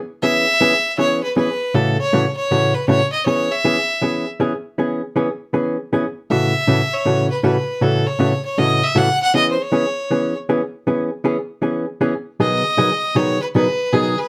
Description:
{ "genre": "country", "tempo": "158 BPM", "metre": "4/4", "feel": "swing 64% on 8ths", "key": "E major", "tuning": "A4 = 440 Hz", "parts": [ { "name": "rich fiddle", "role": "melody", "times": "0.2-14.3 s", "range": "G#4 to F#5", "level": "-21 LUFS", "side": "equal", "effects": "none" }, { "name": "hollow-body jazz guitar", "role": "accompaniment", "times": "0.2-14.1 s", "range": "A2 to G#4", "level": "-20 LUFS", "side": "equal", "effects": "none" } ], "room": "wet studio ambience, RT60 0.4 s", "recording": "band playing live in one room", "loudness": "-18 LUFS", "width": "mono", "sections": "0.2-14.3 A section", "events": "none", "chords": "0.2 E6; 1.7 A6; 3.3 E6; 6.3 A6; 9.4 E6; 12.4 B6" }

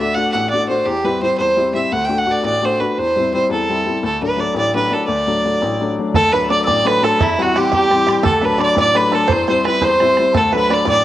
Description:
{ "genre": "celtic folk, Celtic jig", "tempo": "114 BPM (dotted quarters)", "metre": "6/8", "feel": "straight", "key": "D mixolydian", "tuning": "A4 = 440 Hz", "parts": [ { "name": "bright fiddle", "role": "melody", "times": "0.0-11.0 s", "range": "E4 to G5", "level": "-16 LUFS", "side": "right 1 dB", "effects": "cassette tape, tape echo" }, { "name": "clear upright piano", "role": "accompaniment", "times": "0.0-11.0 s", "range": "A1 to F#4", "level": "-20 LUFS", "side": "left 4 dB", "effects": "cassette tape" }, { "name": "mellow wooden whistle", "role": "second line", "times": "6.1-11.0 s", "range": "E5 to E6", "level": "-22 LUFS", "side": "left 3 dB", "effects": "cassette tape" }, { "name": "bodhran", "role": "percussion", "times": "6.1-11.0 s", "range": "none", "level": "-23 LUFS", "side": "right 4 dB", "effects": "none" }, { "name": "bluegrass banjo", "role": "second line", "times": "6.2-11.0 s", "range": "E4 to D5", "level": "-22 LUFS", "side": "right 6 dB", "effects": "cassette tape" } ], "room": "moderate spring reverb, RT60 1.8 s, small room reverb", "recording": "home recording on cassette", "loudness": "-14 LUFS", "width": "side -13 dB against mid", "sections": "0.0-6.1 A section; 6.1-11.0 A section", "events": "none", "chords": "0.0 D; 0.9 C/E; 1.9 D; 3.0 C/E; 4.0 D; 7.2 C/E; 8.2 D; 9.3 C/E; 10.3 D" }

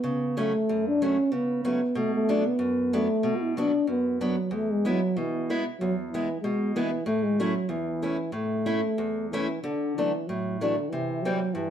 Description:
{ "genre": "alpine folk, alpine dance band", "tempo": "94 BPM", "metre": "2/4", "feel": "straight", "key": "A major", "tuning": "A4 = 440 Hz", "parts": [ { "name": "dark euphonium", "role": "melody", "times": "0.0-11.7 s", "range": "D3 to F#4", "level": "-26 LUFS", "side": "equal", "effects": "none" }, { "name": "fingerpicked steel-string acoustic guitar", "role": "accompaniment", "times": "0.0-11.7 s", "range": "E2 to E4", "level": "-30 LUFS", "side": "equal", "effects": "none" } ], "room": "wet studio reverb, RT60 0.7 s", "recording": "band playing live in one room", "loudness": "-24 LUFS", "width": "side -9 dB against mid", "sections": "0.0-9.6 A section; 9.6-11.7 B section", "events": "none", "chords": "0.0 F#m; 2.0 Bm; 4.5 E; 7.1 A; 9.6 D; 10.9 C" }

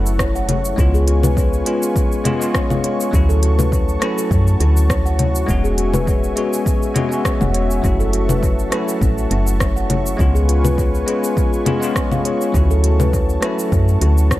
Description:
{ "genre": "organic downtempo", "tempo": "102 BPM", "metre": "4/4", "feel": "swing 54% on 16ths", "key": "F# minor", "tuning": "A4 = 441 Hz", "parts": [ { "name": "bell-like tine electric piano", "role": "accompaniment", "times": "0.0-14.4 s", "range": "F#3 to F#4", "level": "-22 LUFS", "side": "left 2 dB", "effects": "medium stereo tremolo, sidechain pumping, dub echo" }, { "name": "warm analog pad", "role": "sustained chords", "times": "0.0-14.4 s", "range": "E4 to C#6", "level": "-28 LUFS", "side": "right 2 dB", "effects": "chorus, sidechain pumping" }, { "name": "woody FM bass", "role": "bass", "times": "0.0-14.4 s", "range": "E1 to F#2", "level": "-17 LUFS", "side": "equal", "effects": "tube saturation, sidechain pumping" }, { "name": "deep house drum kit", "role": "drums", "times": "0.1-14.4 s", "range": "cabasa, congas, hi-hat, rim click", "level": "-23 LUFS", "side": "left 1 dB", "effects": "none" }, { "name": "steel tongue drum", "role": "arpeggios", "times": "0.2-14.4 s", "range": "E#4 to F#5", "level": "-24 LUFS", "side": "equal", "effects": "analog delay" }, { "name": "electronic kick drum", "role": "drums", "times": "0.2-14.4 s", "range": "none", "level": "-19 LUFS", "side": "equal", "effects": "none" } ], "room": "light reverb, digital ambience", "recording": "echo-heavy mix", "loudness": "-14 LUFS", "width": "side -16 dB against mid", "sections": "0.0-14.4 A section", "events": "none", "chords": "0.0 F#m7; 0.8 C#7; 3.1 Dmaj7; 5.5 E69; 7.8 F#m7; 10.2 C#7; 12.5 Dmaj7" }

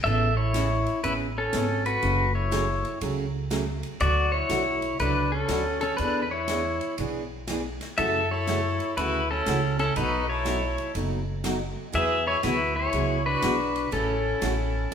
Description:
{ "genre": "country, western swing", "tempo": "121 BPM", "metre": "4/4", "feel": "swing 66% on 8ths", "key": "A major", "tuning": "A4 = 440 Hz", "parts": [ { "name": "pedal steel guitar", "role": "melody", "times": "0.0-14.9 s", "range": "C#4 to E5", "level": "-25 LUFS", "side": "left 2 dB", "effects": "none" }, { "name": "picked steel-string acoustic guitar", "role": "accompaniment", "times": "0.1-14.9 s", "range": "B2 to G#4", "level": "-32 LUFS", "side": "right 2 dB", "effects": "none" }, { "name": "upright bass", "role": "bass", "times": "0.1-14.9 s", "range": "F#1 to F#2", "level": "-29 LUFS", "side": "right 1 dB", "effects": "none" }, { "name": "swinging big-band drum kit", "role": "drums", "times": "0.5-14.9 s", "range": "hi-hat, ride cymbal, snare drum", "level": "-38 LUFS", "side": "left 1 dB", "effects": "none" }, { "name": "clear fiddle", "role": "second line", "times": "8.0-14.9 s", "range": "E4 to B4", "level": "-35 LUFS", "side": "right 1 dB", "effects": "none" } ], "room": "wet large studio reverb, RT60 1.3 s", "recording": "band playing live in one room", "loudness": "-23 LUFS", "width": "side -8 dB against mid", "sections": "0.0-14.9 A section", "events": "none", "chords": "0.0 Aadd9; 2.0 F#madd9; 4.0 D; 6.0 E7; 8.0 F#m7; 10.0 B7; 11.9 Eadd9; 13.9 A6" }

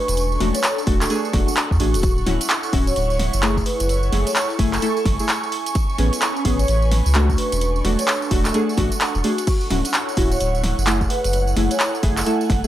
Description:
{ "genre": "UK garage, two-step garage", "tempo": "129 BPM", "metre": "4/4", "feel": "swing 62% on 16ths", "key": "unclear", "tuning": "A4 = 440 Hz", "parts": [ { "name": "vibraphone with soft mallets", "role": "melody", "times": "0.0-12.4 s", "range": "F#4 to C#5", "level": "-26 LUFS", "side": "equal", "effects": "none" }, { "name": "ethereal airy pad", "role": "sustained chords", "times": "0.0-12.7 s", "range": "F#5 to C#6", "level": "-30 LUFS", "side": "right 5 dB", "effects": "ensemble chorus, built-in reverb, sidechain pumping" }, { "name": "deep mellow chord stab", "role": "stabs", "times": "0.0-12.7 s", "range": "A3 to A4", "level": "-24 LUFS", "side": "left 1 dB", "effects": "chorus" }, { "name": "airy breathy pad", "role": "texture", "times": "0.0-12.7 s", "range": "C#4 to G#5", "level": "-30 LUFS", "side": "right 2 dB", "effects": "chorus, phaser, sidechain pumping" }, { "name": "saturated sub bass", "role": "bass", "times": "0.1-12.6 s", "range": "D1 to E2", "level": "-21 LUFS", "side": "equal", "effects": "tube saturation" }, { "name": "house drum kit", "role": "drums", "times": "0.1-12.6 s", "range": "crash cymbal, handclaps, hi-hat, snare drum", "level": "-24 LUFS", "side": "equal", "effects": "overdrive" }, { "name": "tambourine", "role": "percussion", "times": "0.1-12.7 s", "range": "none", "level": "-31 LUFS", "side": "right 4 dB", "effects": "none" }, { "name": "electronic kick drum", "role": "drums", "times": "0.9-12.6 s", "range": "none", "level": "-21 LUFS", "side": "equal", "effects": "overdrive" } ], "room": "little or no reverb", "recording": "dry, gritty hardware recording", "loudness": "-17 LUFS", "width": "side -13 dB against mid", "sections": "0.0-12.7 A section", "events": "none", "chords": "0.0 E9sus4; 3.7 F#m9; 5.5 Amaj9; 7.4 E9sus4; 9.5 Dmaj9; 11.1 F#m9" }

